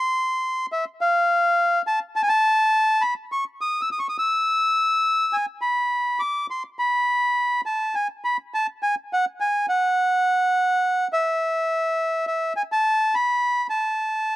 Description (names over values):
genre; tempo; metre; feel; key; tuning
tango; 104 BPM; 4/4; rubato; A harmonic minor; A4 = 436 Hz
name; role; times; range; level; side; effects
bandoneon; solo; 0.0-14.4 s; E5 to E6; -20 LUFS; equal; none
room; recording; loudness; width
little or no reverb; recorded outdoors, with no room sound; -20 LUFS; side -17 dB against mid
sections
0.0-14.4 A section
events
none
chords
none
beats
0.41 0.99 1.56 | 2.14 2.71 3.29 3.87 | 4.44 5.02 5.60 6.19 | 6.78 7.35 7.93 8.51 | 9.09 9.67 10.25 10.82 | 11.39 11.97 12.54 13.12 | 13.70 14.27